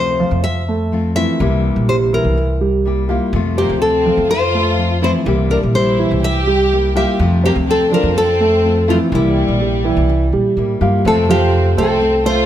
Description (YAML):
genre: latin, Cuban son and guajira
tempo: 124 BPM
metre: 4/4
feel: straight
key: F major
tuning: A4 = 440 Hz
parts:
  - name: nylon-string guitar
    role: melody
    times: 0.0-12.5 s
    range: E4 to E5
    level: -18 LUFS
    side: left 2 dB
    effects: none
  - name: nylon-string guitar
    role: accompaniment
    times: 0.0-12.0 s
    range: C3 to G4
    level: -20 LUFS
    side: left 4 dB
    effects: none
  - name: dark concert grand piano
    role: arpeggios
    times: 0.0-12.5 s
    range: E3 to F5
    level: -19 LUFS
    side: right 4 dB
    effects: none
  - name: upright bass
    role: bass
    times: 0.0-12.5 s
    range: Bb1 to Bb2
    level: -18 LUFS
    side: equal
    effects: none
  - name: dark studio violin section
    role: second line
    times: 3.6-12.5 s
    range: G3 to G4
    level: -22 LUFS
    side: left 1 dB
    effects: none
room: moderate recital hall reverb, RT60 1.6 s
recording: none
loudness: -13 LUFS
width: side -11 dB against mid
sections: 0.0-11.1 A section; 11.1-12.5 B section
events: none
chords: 0.0 F; 1.4 C7; 3.3 F; 5.3 C7; 7.2 F; 9.1 C7; 11.1 F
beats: 0.44 0.92 | 1.41 1.89 2.37 2.85 | 3.33 3.82 4.30 4.78 | 5.27 5.75 6.23 6.71 | 7.20 7.68 8.16 8.64 | 9.13 9.61 10.09 10.57 | 11.05 11.54 12.02